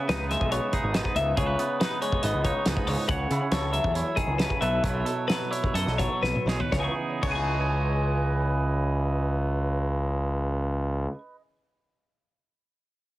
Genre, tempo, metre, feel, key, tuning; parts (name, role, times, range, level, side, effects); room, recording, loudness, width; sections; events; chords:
math rock and midwest emo; 119-140 BPM; 4/4; straight; C# minor; A4 = 442 Hz
twangy electric guitar; accompaniment; 0.0-11.5 s; G#2 to G#5; -30 LUFS; right 4 dB
twelve-string electric guitar; arpeggios; 0.0-11.2 s; G#4 to C#6; -30 LUFS; left 4 dB; plate reverb, analog delay
fuzz picked electric bass; bass; 0.1-11.1 s; G#1 to C#3; -27 LUFS; equal; overdrive
loose indie drum kit; drums; 0.1-7.4 s; crash cymbal, hi-hat, kick drum, snare drum, toms; -30 LUFS; equal
light reverb; heavily compressed radio sound, multiband compression; -24 LUFS; side -16 dB against mid
0.0-6.7 A section; 6.7-10.7 B section
slowing down 3.1-6.7; drum fill 6.2-6.7
0.0 C#m9; 3.1 F#m9/C#; 4.6 B7sus4; 6.7 C#m9